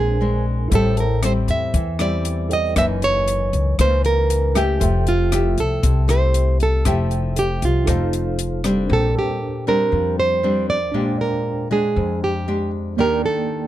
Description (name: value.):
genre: bossa nova.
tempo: 117 BPM.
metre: 4/4.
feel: straight.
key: F major, Bb major from 8.9 s.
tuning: A4 = 440 Hz.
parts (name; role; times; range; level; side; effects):
nylon-string guitar; melody; 0.0-13.7 s; F4 to E5; -21 LUFS; right 3 dB; none.
nylon-string guitar; accompaniment; 0.0-13.7 s; F2 to A4; -24 LUFS; left 2 dB; none.
tine electric piano; accompaniment; 0.0-13.7 s; Bb3 to Ab5; -30 LUFS; right 4 dB; medium tremolo.
upright bass; bass; 0.0-13.2 s; F1 to F2; -21 LUFS; left 1 dB; none.
compact cocktail drum kit; drums; 0.7-8.8 s; hi-hat, kick drum, rim click; -24 LUFS; left 1 dB; none.
room: little or no reverb.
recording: close, detailed microphones.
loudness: -17 LUFS.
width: side -13 dB against mid.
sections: 0.0-8.9 A section; 8.9-13.7 B section.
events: none.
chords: 0.0 Bb9; 0.7 Am7; 2.8 Gb13; 4.8 Fmaj9; 7.9 F7; 8.9 Bb69; 10.9 Bb13; 13.0 Ebmaj7.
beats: 0.20 | 0.71 1.23 1.74 2.25 | 2.76 3.27 3.78 4.30 | 4.81 5.32 5.83 6.34 | 6.85 7.36 7.88 8.39 | 8.90 9.41 9.92 10.43 | 10.94 11.45 11.96 12.47 | 12.98 13.49.